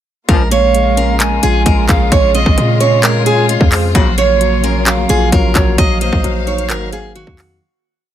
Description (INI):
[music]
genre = hip hop, trap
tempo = 131 BPM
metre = 4/4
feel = half-time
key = Bb minor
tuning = A4 = 440 Hz
[part]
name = picked steel-string acoustic guitar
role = melody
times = 0.3-7.6 s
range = F4 to Eb5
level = -16 LUFS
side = right 5 dB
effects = none
[part]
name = tine electric piano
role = accompaniment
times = 0.3-7.6 s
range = Eb3 to F5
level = -19 LUFS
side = right 1 dB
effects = overdrive, fast stereo tremolo
[part]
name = warm symphonic string section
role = sustained chords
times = 0.3-7.6 s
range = Db3 to F5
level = -23 LUFS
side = left 2 dB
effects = none
[part]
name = clear brass ensemble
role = stabs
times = 0.3-0.4, 4.0-4.1 s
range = Bb1 to F3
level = -22 LUFS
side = left 9 dB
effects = none
[part]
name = hard-hitting 808-style bass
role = bass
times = 0.3-7.6 s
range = Ab1 to Bb2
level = -16 LUFS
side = equal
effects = none
[part]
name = trap drum kit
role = drums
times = 0.3-7.5 s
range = handclaps, hi-hat, kick drum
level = -14 LUFS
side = equal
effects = none
[part]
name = polished pan flute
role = second line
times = 0.5-7.1 s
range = C5 to Ab5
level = -22 LUFS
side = left 5 dB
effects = tape echo
[sound]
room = small room ambience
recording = none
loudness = -10 LUFS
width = side -11 dB against mid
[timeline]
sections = 0.3-7.6 hook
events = fade-out 5.8-7.6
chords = 0.3 Bbm7; 2.1 Dbmaj7/Bb; 4.0 Gbmaj7/Bb; 5.8 Ebmadd9/Bb